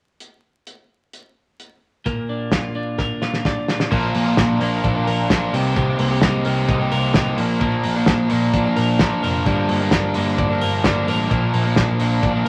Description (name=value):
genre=jangly indie pop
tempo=130 BPM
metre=4/4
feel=straight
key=Bb major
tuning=A4 = 440 Hz
part: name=cloth-damped thuddy drum kit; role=drums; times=0.2-12.5 s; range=crash cymbal, hi-hat, kick drum, snare drum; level=-24 LUFS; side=equal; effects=none
part: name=twelve-string electric guitar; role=arpeggios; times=2.1-12.5 s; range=G2 to Bb4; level=-24 LUFS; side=equal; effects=none
part: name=overdriven electric guitar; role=accompaniment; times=3.9-12.5 s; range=G2 to G4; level=-25 LUFS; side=equal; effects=none
part: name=vintage muted picked electric bass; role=bass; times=3.9-12.5 s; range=F1 to C2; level=-26 LUFS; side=equal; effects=none
room=moderate studio reverb, RT60 0.8 s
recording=vinyl crackle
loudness=-19 LUFS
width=mono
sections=0.2-2.1 A section; 2.1-3.9 B section; 3.9-12.5 C section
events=drum fill 3.0-3.9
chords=0.2 N.C.; 2.1 Bb; 5.5 Cm7; 7.4 Bb; 9.5 Gm7; 11.3 Bb